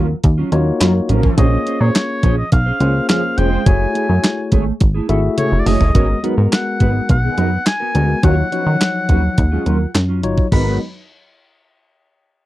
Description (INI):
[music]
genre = early-eighties boogie funk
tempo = 105 BPM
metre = 4/4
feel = straight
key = G# dorian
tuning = A4 = 440 Hz
[part]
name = mellow synth brass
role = second line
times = 0.0-10.8 s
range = D#3 to C#5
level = -23 LUFS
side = right 1 dB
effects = chorus
[part]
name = mellow electric guitar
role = riff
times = 0.0-10.7 s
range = F#3 to C#5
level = -25 LUFS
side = right 5 dB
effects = lush chorus
[part]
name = plucky analog bass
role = bass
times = 0.0-10.8 s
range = E#1 to D#3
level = -16 LUFS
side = equal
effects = none
[part]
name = crisp 8-bit digital drum machine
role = drums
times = 0.2-10.7 s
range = crash cymbal, handclaps, hi-hat, kick drum, snare drum, toms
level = -16 LUFS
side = equal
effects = overdrive
[part]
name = tine electric piano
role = accompaniment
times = 0.5-10.8 s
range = E#3 to E5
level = -21 LUFS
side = left 3 dB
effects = none
[part]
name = clear oboe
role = melody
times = 1.4-10.8 s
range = C#5 to B5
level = -22 LUFS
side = left 1 dB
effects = slapback echo
[sound]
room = little or no reverb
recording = dry, close 1970s-style studio recording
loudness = -13 LUFS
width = side -16 dB against mid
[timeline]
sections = 0.0-6.0 A section; 6.0-10.5 B section; 10.5-12.5 C section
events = drum fill 5.4-6.0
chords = 0.0 D#m9; 1.4 A#m9; 3.7 F#m9; 6.0 G#m9; 8.2 D#m9; 10.5 G#m9